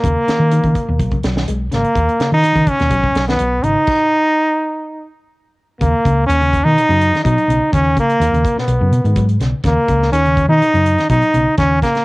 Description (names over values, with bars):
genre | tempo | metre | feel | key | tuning
afrobeat | 125 BPM | 4/4 | straight | unclear | A4 = 440 Hz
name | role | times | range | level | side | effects
brilliant trombone | melody | 0.0-12.0 s | Bb3 to D#4 | -15 LUFS | equal | cassette tape
electric guitar at the edge of break-up | arpeggios | 0.0-12.0 s | Cb3 to G#3 | -23 LUFS | left 2 dB | analog chorus, cassette tape
hollow-body short-scale fingered electric bass | bass | 0.0-11.8 s | G#1 to Eb3 | -16 LUFS | equal | none
tight funk drum kit | drums | 0.0-12.0 s | crash cymbal, hi-hat, kick drum, snare drum | -22 LUFS | equal | cassette tape
room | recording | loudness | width
light reverb, small room ambience | home recording on cassette | -12 LUFS | side -22 dB against mid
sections
0.0-5.8 A section; 5.8-12.0 B section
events
stop 3.9-5.8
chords
0.0 Eb5; 1.0 B5; 2.0 Bmaj9/D#; 2.9 B; 3.9 N.C.; 5.8 Eb5; 6.8 B; 7.7 Eb5; 8.7 B5; 9.7 Eb5; 10.6 B